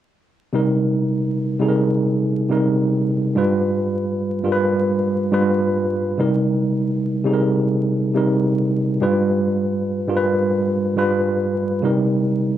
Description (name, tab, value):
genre	hip hop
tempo	85 BPM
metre	4/4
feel	swing 55% on 16ths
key	C minor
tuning	A4 = 444 Hz
part	tine electric piano	accompaniment	0.5-12.6 s	G2 to B4	-17 LUFS	right 1 dB	overdrive, fast stereo tremolo, cassette tape, high-pass filter, low-pass filter
room	light reverb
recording	vinyl crackle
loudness	-17 LUFS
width	side -11 dB against mid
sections	0.5-12.6 A section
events	none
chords	0.5 Cm7; 3.4 G7; 6.2 Cm7; 9.0 G7; 11.8 Cm7